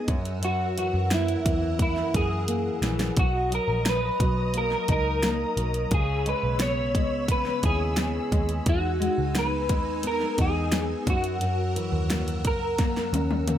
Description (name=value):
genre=indie pop, bedroom pop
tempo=87 BPM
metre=4/4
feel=straight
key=unclear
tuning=A4 = 440 Hz
part: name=electric guitar through a small old amp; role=melody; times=0.0-13.6 s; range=E4 to C#5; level=-27 LUFS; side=equal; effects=ensemble chorus, digital delay
part: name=nylon-string guitar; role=accompaniment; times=0.0-13.6 s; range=F#2 to E4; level=-31 LUFS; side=left 2 dB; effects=lush chorus, warbly pitch drift
part: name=string machine, violas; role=sustained chords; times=0.0-13.6 s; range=D#4 to E6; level=-37 LUFS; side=right 2 dB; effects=ensemble chorus
part: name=vintage muted picked electric bass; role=bass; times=0.1-13.5 s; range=A#1 to F#2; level=-29 LUFS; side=equal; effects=none
part: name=pop drum kit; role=drums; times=0.1-13.6 s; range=hi-hat, kick drum, snare drum, toms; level=-27 LUFS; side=equal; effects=none
room=light reverb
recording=none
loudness=-23 LUFS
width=side -10 dB against mid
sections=0.0-13.6 A section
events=drum fill 2.5-3.2, 12.8-13.6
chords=0.1 F#7; 3.2 Bmaj7; 5.9 C#m7; 8.7 Emaj7; 11.1 F#7